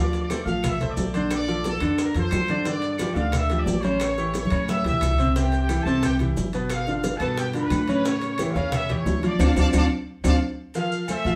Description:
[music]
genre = latin, salsa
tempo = 178 BPM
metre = 4/4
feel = straight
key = D minor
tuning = A4 = 443 Hz
[part]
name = clear trumpet section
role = melody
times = 0.0-11.4 s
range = G4 to E6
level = -31 LUFS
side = equal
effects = none
[part]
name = bright concert grand piano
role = accompaniment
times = 0.0-11.4 s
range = B2 to F5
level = -28 LUFS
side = equal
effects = none
[part]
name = upright bass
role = bass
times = 0.0-11.4 s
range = G1 to A2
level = -28 LUFS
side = equal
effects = none
[part]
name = bongos and cowbell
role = percussion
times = 0.1-11.3 s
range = none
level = -36 LUFS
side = equal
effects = none
[part]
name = congas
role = percussion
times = 0.1-11.4 s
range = none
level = -33 LUFS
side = equal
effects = none
[part]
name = maracas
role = percussion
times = 0.1-11.4 s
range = none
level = -44 LUFS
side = equal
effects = none
[part]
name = timbales and agogo bells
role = percussion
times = 0.1-11.4 s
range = none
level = -40 LUFS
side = equal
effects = none
[part]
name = claves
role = percussion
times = 0.3-11.3 s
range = none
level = -42 LUFS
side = equal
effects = none
[sound]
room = wet studio reverb, RT60 0.6 s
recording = band playing live in one room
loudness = -24 LUFS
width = mono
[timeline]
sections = 0.0-10.7 A section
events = drum fill 4.3-5.4, 9.7-10.7; band accent 9.4-10.7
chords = 0.0 Dm7; 1.3 Bbmaj7; 2.7 G5; 4.0 A7; 5.4 C; 6.7 G7; 8.1 A7; 9.4 Dm7; 10.7 Dm7 (rootless)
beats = 0.31 0.64 0.98 | 1.32 1.65 1.99 2.33 | 2.66 3.00 3.33 3.67 | 4.01 4.34 4.68 5.02 | 5.36 5.69 6.03 6.37 | 6.70 7.04 7.38 7.72 | 8.05 8.39 8.73 9.06 | 9.40 9.74 10.08 10.41 | 10.75 11.09

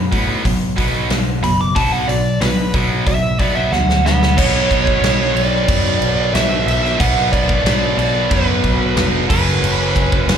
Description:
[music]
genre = hard rock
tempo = 92 BPM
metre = 4/4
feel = straight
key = B minor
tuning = A4 = 437 Hz
[part]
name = tight distorted guitar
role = riff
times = 0.0-10.4 s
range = F#2 to B3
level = -18 LUFS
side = equal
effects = distortion
[part]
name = picked electric bass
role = bass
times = 0.0-10.4 s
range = E#1 to A2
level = -20 LUFS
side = equal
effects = none
[part]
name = big rock drum kit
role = drums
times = 0.1-10.4 s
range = crash cymbal, hi-hat, kick drum, snare drum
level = -19 LUFS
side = equal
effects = none
[part]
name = dark smooth lead guitar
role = melody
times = 1.4-10.4 s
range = B4 to D6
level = -20 LUFS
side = right 2 dB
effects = overdrive, slapback echo, analog delay
[sound]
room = small room ambience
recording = live gig heard through the venue's PA, club reverb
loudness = -13 LUFS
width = side -8 dB against mid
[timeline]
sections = 0.0-4.4 A section; 4.4-10.4 B section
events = lead electric guitar solo 0.0-4.4; drum fill 3.7-4.4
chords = 0.0 Bm; 9.3 F#5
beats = 0.46 1.11 | 1.76 2.42 3.07 3.72 | 4.38 5.03 5.69 6.34 | 7.00 7.65 8.31 8.96 | 9.62 10.28

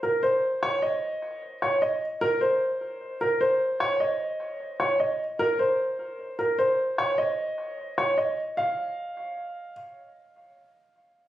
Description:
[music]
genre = hip hop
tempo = 151 BPM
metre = 4/4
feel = half-time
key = unclear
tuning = A4 = 440 Hz
[part]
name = dark concert grand piano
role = solo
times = 0.0-9.7 s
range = Bb4 to F5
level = -24 LUFS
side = equal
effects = tape echo
[sound]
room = light reverb, small room ambience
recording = recorded on a phone in the room, studio reverb, compression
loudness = -24 LUFS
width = side -13 dB against mid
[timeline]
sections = 0.0-8.6 A section; 8.6-11.3 B section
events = none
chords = none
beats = 0.23 | 0.63 1.02 1.42 1.82 | 2.21 2.61 3.01 3.41 | 3.81 4.20 4.60 5.00 | 5.39 5.79 6.19 6.59 | 6.98 7.38 7.78 8.18 | 8.57 8.97 9.37

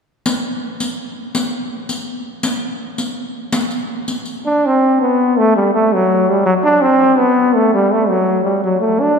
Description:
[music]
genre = medieval dance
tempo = 165 BPM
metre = 3/4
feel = straight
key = D mixolydian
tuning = A4 = 442 Hz
[part]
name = riq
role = percussion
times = 0.3-4.3 s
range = none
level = -21 LUFS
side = left 1 dB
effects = none
[part]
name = warm trombone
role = melody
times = 4.5-9.2 s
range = F#3 to D4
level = -11 LUFS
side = equal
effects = none
[sound]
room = wet church reverb, RT60 3.1 s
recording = recorded in a church or concert hall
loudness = -14 LUFS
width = side -6 dB against mid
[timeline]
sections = 0.3-4.6 A section; 4.6-9.2 B section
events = none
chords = none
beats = | 0.27 0.63 0.99 | 1.35 1.72 2.08 | 2.45 2.81 3.17 | 3.54 3.90 4.26 | 4.63 4.99 5.35 | 5.72 6.08 6.44 | 6.81 7.17 7.53 | 7.90 8.26 8.62 | 8.98

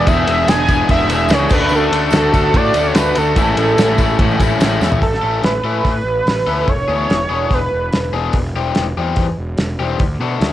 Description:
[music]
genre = indie rock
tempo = 145 BPM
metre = 4/4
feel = straight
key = A major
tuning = A4 = 444 Hz
[part]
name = octave-doubled lead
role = melody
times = 0.0-8.1 s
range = A4 to G#5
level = -18 LUFS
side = right 2 dB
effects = chorus
[part]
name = combo organ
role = sustained chords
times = 0.0-5.0 s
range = D4 to C#6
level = -28 LUFS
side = right 1 dB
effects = none
[part]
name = raw garage guitar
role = riff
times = 0.0-10.5 s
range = A2 to A4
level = -19 LUFS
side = left 8 dB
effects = overdrive, cassette tape
[part]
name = twelve-string electric guitar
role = riff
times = 0.0-5.0 s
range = E2 to A4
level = -22 LUFS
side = right 8 dB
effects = wide subtle chorus, cassette tape
[part]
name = fuzz picked electric bass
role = bass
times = 0.0-10.5 s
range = E1 to B2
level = -21 LUFS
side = equal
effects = overdrive, transformer saturation
[part]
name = cloth-damped thuddy drum kit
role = drums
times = 0.1-10.5 s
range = crash cymbal, hi-hat, kick drum, ride cymbal, snare drum, toms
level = -17 LUFS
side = equal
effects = cassette tape
[part]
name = tambourine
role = percussion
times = 0.1-5.0 s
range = none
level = -35 LUFS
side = right 10 dB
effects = none
[sound]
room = light reverb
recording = home recording on cassette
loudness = -13 LUFS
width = side -13 dB against mid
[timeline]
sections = 0.0-5.0 A section; 5.0-10.5 B section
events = drum fill 4.8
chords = 0.0 E7; 1.5 Dmaj7; 3.4 Amaj7; 5.0 Aadd9; 6.7 E7; 8.3 C/E; 10.0 D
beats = | 0.07 0.48 0.89 1.30 | 1.72 2.13 2.54 2.96 | 3.37 3.78 4.19 4.61 | 5.02 5.44 5.85 6.26 | 6.68 7.09 7.51 7.93 | 8.34 8.76 9.17 9.59 | 10.00 10.42

